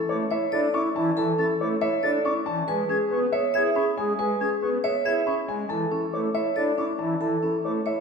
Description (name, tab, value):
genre	classical, minimalist pattern music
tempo	278 BPM (eighths)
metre	7/8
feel	straight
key	unclear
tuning	A4 = 440 Hz
part	dark grand piano	melody	0.0-8.0 s	G#4 to C#6	-28 LUFS	left 5 dB	none
part	bright alto flute	second line	0.0-8.0 s	E4 to G#4	-30 LUFS	right 2 dB	none
part	vibraphone with medium mallets	arpeggios	0.0-8.0 s	C#4 to E5	-28 LUFS	right 5 dB	none
part	pipe organ, foundations	accompaniment	0.1-7.8 s	E3 to E4	-30 LUFS	left 1 dB	none
part	silver concert flute	arpeggios	0.1-7.7 s	C#6 to A6	-33 LUFS	left 3 dB	none
room	wet recital hall reverb, RT60 1.6 s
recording	minimal, uncompressed stereo recording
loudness	-22 LUFS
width	side -5 dB against mid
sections	0.0-8.0 A section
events	none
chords	0.0 Dsus2; 2.7 E; 5.7 Dsus2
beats	0.09 0.30 0.52 0.73 0.95 | 1.17 1.38 1.60 1.81 2.03 2.24 2.46 | 2.68 2.89 3.11 3.32 3.54 3.75 3.97 | 4.19 4.40 4.62 4.83 5.05 5.27 5.48 | 5.70 5.91 6.13 6.34 6.56 6.78 6.99 | 7.21 7.42 7.64 7.86